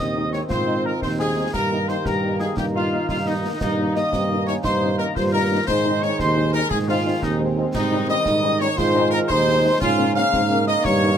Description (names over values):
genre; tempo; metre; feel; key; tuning
military-style march for wind band; 116 BPM (dotted quarters); 6/8; straight; Ab major; A4 = 439 Hz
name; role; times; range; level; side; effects
warm trumpet section; melody; 0.0-11.2 s; Eb4 to F5; -26 LUFS; left 1 dB; none
mellow woodwind section; second line; 0.0-11.2 s; Eb4 to F5; -26 LUFS; left 1 dB; none
piccolo; second line; 0.0-11.2 s; Eb5 to F6; -29 LUFS; left 2 dB; none
warm euphonium; second line; 0.0-11.2 s; Bb3 to G4; -28 LUFS; right 3 dB; none
dark trombone section; sustained chords; 0.0-11.2 s; Db3 to C4; -28 LUFS; left 1 dB; none
dark tuba; bass; 0.0-11.2 s; Eb2 to Ab2; -24 LUFS; right 3 dB; none
dark French horn section; accompaniment; 0.2-11.1 s; G3 to Eb4; -28 LUFS; left 4 dB; none
concert snare drum, concert bass drum and clash cymbals; drums; 0.3-11.0 s; none; -31 LUFS; equal; none
room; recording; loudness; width
little or no reverb; none; -18 LUFS; side -8 dB against mid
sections
0.0-11.2 A section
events
none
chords
0.0 Ab; 1.5 Eb/G; 3.6 Eb7/G; 5.7 Ab; 7.7 Eb7/Ab; 8.8 Ab; 9.8 Bbm7/Ab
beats
| 0.50 1.02 | 1.54 2.06 | 2.57 3.09 | 3.61 4.13 | 4.64 5.16 | 5.68 6.20 | 6.71 7.23 | 7.75 8.26 | 8.78 9.29 | 9.81 10.33 | 10.84